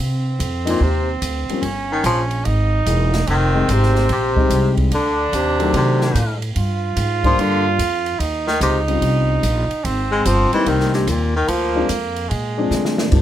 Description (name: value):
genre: jazz, small-group swing and bop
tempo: 146 BPM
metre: 4/4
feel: swing 66% on 8ths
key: C minor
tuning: A4 = 439 Hz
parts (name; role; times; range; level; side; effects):
- mellow trumpet; second line; 0.0-13.0 s; Ab3 to F4; -23 LUFS; right 4 dB; none
- upright bass; bass; 0.0-13.2 s; E1 to D3; -20 LUFS; equal; none
- open jazz drum kit; drums; 0.4-13.2 s; crash cymbal, hi-hat, kick drum, ride cymbal, snare drum; -26 LUFS; right 1 dB; none
- warm concert grand piano; accompaniment; 0.6-13.2 s; Eb3 to F4; -22 LUFS; left 4 dB; none
- warm baritone saxophone; melody; 0.7-11.9 s; G2 to Ab3; -19 LUFS; left 2 dB; none
room: light reverb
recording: none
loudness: -16 LUFS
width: side -12 dB against mid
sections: 0.0-13.1 A section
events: drum fill 12.7-13.1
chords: 0.0 Cm11; 1.6 Gdim; 2.4 Emaj7#11; 3.3 Fm9; 4.9 D7b9; 6.6 Gm7; 8.2 Eb13; 9.8 Abmaj7; 11.5 Dm7b5; 12.3 Bb7